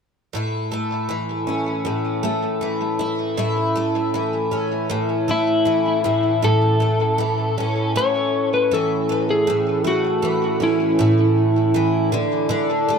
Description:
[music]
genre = acoustic pop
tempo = 79 BPM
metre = 4/4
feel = straight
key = A major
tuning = A4 = 440 Hz
[part]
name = picked twelve-string acoustic guitar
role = accompaniment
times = 0.3-13.0 s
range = A2 to E4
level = -20 LUFS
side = equal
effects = double-tracked left and right, tape echo
[part]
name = electric slide guitar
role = melody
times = 5.3-12.1 s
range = E4 to C#5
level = -20 LUFS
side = left 1 dB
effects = tape echo
[sound]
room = wet spring reverb, RT60 2.0 s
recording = echo-heavy mix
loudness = -18 LUFS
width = side -6 dB against mid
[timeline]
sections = 0.3-6.4 A section; 6.4-13.0 B section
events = none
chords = 0.3 A; 6.0 N.C.; 6.4 A; 12.1 D5

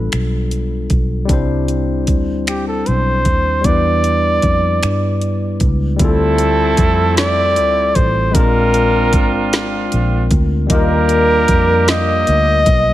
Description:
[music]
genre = slow six-eight R&B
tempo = 51 BPM (dotted quarters)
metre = 6/8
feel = straight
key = unclear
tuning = A4 = 440 Hz
[part]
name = barky tine electric piano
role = accompaniment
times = 0.0-12.9 s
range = G3 to Eb5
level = -20 LUFS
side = left 4 dB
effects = none
[part]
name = vintage muted fingered electric bass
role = bass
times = 0.0-12.9 s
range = Ab1 to G2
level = -18 LUFS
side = equal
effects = none
[part]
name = smooth R&B drum kit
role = drums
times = 0.1-12.8 s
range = finger snaps, hi-hat, kick drum, snare drum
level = -17 LUFS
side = equal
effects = none
[part]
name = warm flugelhorn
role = melody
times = 2.5-12.9 s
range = G4 to Eb5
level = -16 LUFS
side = equal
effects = slapback echo
[part]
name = clear horn section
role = stabs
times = 6.0-12.6 s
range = D3 to G4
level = -22 LUFS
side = right 6 dB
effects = none
[sound]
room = light reverb, digital ambience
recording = none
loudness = -12 LUFS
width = side -14 dB against mid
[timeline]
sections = 0.0-6.0 A section; 6.0-12.9 B section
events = none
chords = 0.0 G7; 1.3 Cmaj9; 3.6 Em7; 6.0 Dm11; 8.3 Bb9; 10.7 Ebmaj9

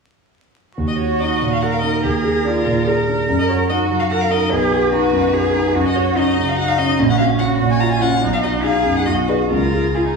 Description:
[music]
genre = quick classical-period movement for piano trio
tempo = 145 BPM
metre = 3/4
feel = rubato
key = Eb minor, F# major from 5.8 s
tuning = A4 = 436 Hz
[part]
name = rich cello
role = second line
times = 0.8-10.1 s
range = C#4 to Bb4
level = -21 LUFS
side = right 4 dB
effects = none
[part]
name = warm grand piano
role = accompaniment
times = 0.8-10.2 s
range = A#1 to D#5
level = -18 LUFS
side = right 1 dB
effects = none
[part]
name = warm violin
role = melody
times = 0.9-10.2 s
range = G#4 to A#5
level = -21 LUFS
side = left 5 dB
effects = none
[sound]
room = wet recital hall reverb, RT60 1.6 s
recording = recorded in a church or concert hall, vinyl crackle, studio ambience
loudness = -15 LUFS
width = side -4 dB against mid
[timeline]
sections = 0.8-10.2 A section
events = none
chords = 0.8 Ebm; 2.0 Bb7/Eb; 3.3 Ebm/Gb; 4.5 B; 5.8 F#5; 7.0 F#/A#; 8.2 B; 9.1 G#m/B; 9.5 C#

